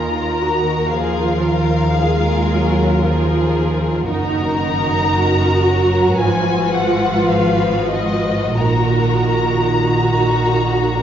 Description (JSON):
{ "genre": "classical, slow romantic movement for string orchestra", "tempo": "44-59 BPM", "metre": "4/4", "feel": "rubato", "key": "Eb minor", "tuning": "A4 = 440 Hz", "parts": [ { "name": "dark studio violin section", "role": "melody", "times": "0.0-11.0 s", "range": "Eb5 to Bb5", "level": "-22 LUFS", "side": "left 3 dB", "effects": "none" }, { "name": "rich studio violin section", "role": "second line", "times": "0.0-11.0 s", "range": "Gb4 to Cb5", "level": "-23 LUFS", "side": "left 3 dB", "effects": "none" }, { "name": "rich studio viola section", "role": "accompaniment", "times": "0.0-11.0 s", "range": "Eb3 to Gb4", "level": "-19 LUFS", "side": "right 2 dB", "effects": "none" }, { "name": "warm studio cello section", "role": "bass", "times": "0.0-11.0 s", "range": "Eb2 to Bb2", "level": "-22 LUFS", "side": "right 1 dB", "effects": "none" }, { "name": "warm studio double bass section", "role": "bass", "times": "0.0-11.0 s", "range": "Gb1 to Eb2", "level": "-21 LUFS", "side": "right 2 dB", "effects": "none" } ], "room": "wet recital hall reverb, RT60 1.6 s", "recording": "heard from further back in the room, nothing above 7.5 kHz", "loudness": "-14 LUFS", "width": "side -9 dB against mid", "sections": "0.0-11.0 A section", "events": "none", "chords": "0.0 Bb5/Eb; 4.1 Ebm/Gb; 6.2 Fdim/Ab; 8.6 Ebm/Bb", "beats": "0.91 1.98 3.05 | 4.08 5.14 6.20 7.29 | 8.60 9.82 11.00" }